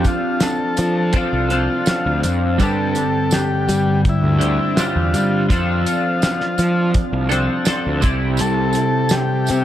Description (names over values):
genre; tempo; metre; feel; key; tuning
psychedelic rock; 83 BPM; 4/4; straight; unclear; A4 = 439 Hz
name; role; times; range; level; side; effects
combo organ; melody; 0.0-9.6 s; E4 to A4; -22 LUFS; left 2 dB; tape echo
mellow tonewheel organ; sustained chords; 0.0-9.6 s; C4 to A5; -31 LUFS; right 2 dB; slow rotary speaker, chorus vibrato
twelve-string electric guitar; riff; 0.0-9.6 s; G2 to A4; -20 LUFS; equal; rotary speaker, double-tracked left and right, tape echo
fuzz picked electric bass; bass; 0.0-9.6 s; C2 to G3; -20 LUFS; equal; overdrive
tambourine; percussion; 0.0-9.6 s; none; -33 LUFS; right 8 dB; tape echo
cloth-damped thuddy drum kit; drums; 0.1-9.6 s; hi-hat, kick drum, snare drum; -20 LUFS; equal; none
room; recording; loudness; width
light reverb, small room ambience; echo-heavy mix; -16 LUFS; side -12 dB against mid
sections
0.0-9.6 A section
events
none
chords
0.0 F6; 2.6 Gsus4; 5.5 F6; 8.0 C